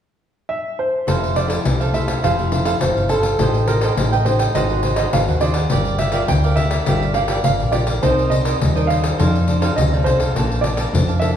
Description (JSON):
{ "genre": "samba and choro", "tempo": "103 BPM", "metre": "4/4", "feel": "straight", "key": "F major", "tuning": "A4 = 438 Hz", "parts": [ { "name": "warm baby grand piano", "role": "melody", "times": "0.5-11.3 s", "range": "A4 to G5", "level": "-22 LUFS", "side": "right 2 dB", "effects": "none" }, { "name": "cavaquinho", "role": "accompaniment", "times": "1.1-11.4 s", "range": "Eb4 to A5", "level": "-24 LUFS", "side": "right 5 dB", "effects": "none" }, { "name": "nylon-string guitar", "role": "accompaniment", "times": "1.1-11.4 s", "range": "C3 to D5", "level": "-26 LUFS", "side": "left 3 dB", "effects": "none" }, { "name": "hollow-body short-scale fingered electric bass", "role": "bass", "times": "1.1-11.4 s", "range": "F1 to F2", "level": "-20 LUFS", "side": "equal", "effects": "none" }, { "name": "pandeiro", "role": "percussion", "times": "1.1-11.4 s", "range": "none", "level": "-21 LUFS", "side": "left 2 dB", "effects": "none" } ], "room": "wet recital hall reverb, RT60 1.3 s", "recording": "recorded in a church or concert hall", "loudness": "-16 LUFS", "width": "side -9 dB against mid", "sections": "0.0-1.1 A section; 1.1-11.4 B section", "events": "none", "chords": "0.0 N.C.; 1.1 Fmaj9; 3.4 Am7b5; 4.6 Ab9; 5.7 Gm7; 8.0 Cm9; 9.2 F6; 10.4 Bbmaj9" }